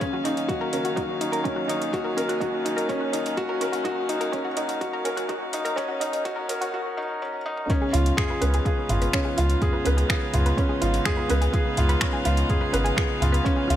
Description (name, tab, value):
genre	piano and strings electronica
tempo	125 BPM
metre	4/4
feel	straight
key	unclear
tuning	A4 = 440 Hz
part	warm string quartet	sustained chords	0.0-13.8 s	Eb2 to F5	-32 LUFS	left 1 dB	sidechain pumping, low-pass filter
part	analog pluck	arpeggios	0.0-13.7 s	Db4 to Cb5	-31 LUFS	right 2 dB	chorus, sidechain pumping, digital delay
part	felt-muted upright piano	riff	0.0-13.8 s	Db4 to Cb5	-26 LUFS	left 1 dB	digital delay
part	deep house drum kit	drums	0.0-13.8 s	finger snaps, hi-hat, toms	-31 LUFS	right 1 dB	high-pass filter on hats, small room ambience, high-pass filter on toms, high-pass filter on snare
part	electronic kick drum	drums	0.0-13.6 s	none	-26 LUFS	equal	small room ambience
part	warm sub bass	bass	7.9-13.8 s	Ab1 to Db2	-22 LUFS	equal	sidechain pumping
room	moderate lush hall reverb, RT60 1.8 s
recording	high-pass filter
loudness	-22 LUFS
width	side -12 dB against mid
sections	0.0-7.7 A section; 7.7-13.8 B section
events	build-up 0.0-7.7; break 6.7-7.7; drum fill 7.5; drop 7.7-13.8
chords	0.0 Ebm7; 7.7 Db7